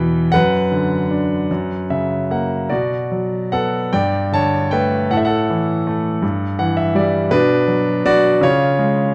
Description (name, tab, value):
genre	classical, lyrical solo piano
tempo	49-55 BPM (dotted quarters)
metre	6/8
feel	rubato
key	B minor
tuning	A4 = 440 Hz
part	bright concert grand piano	solo	0.0-9.1 s	E2 to A5	-18 LUFS	equal	none
room	moderate recital hall reverb, RT60 1.4 s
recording	dark, warm production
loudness	-18 LUFS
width	mono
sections	0.0-9.1 A section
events	grand piano fill 1.5-2.7, 6.2-7.3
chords	0.3 Bm/F#; 1.5 F#; 2.7 Bm; 3.9 Gsus2; 5.1 A5; 6.2 Em/G; 7.3 Bm; 8.4 C#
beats	| 0.34 1.49 | 2.70 3.92 | 5.11 6.23 | 7.32 8.42